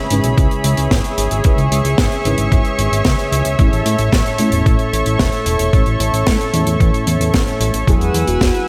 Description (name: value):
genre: italo disco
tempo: 112 BPM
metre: 4/4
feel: straight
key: unclear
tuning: A4 = 435 Hz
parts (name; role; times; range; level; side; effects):
- warm analog pad; sustained chords; 0.0-8.7 s; G#4 to E6; -22 LUFS; equal; chorus
- analog synth brass; stabs; 0.0-8.6 s; A2 to C#5; -25 LUFS; equal; chorus
- fat analog bass; bass; 0.1-8.5 s; E1 to A2; -20 LUFS; equal; none
- tight funk drum kit; drums; 0.1-8.7 s; hi-hat, snare drum; -24 LUFS; equal; studio reverb
- electronic kick drum; drums; 0.4-8.5 s; none; -18 LUFS; equal; studio reverb
- soft octave-layered synth lead; melody; 7.9-8.7 s; F#4 to G#4; -23 LUFS; equal; chorus, phaser
room: light reverb, small room ambience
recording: none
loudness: -15 LUFS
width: mono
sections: 0.0-8.7 A section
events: filter sweep on analog polysynth 0.0-8.7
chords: 0.0 C#m7; 3.6 A; 7.9 Eadd9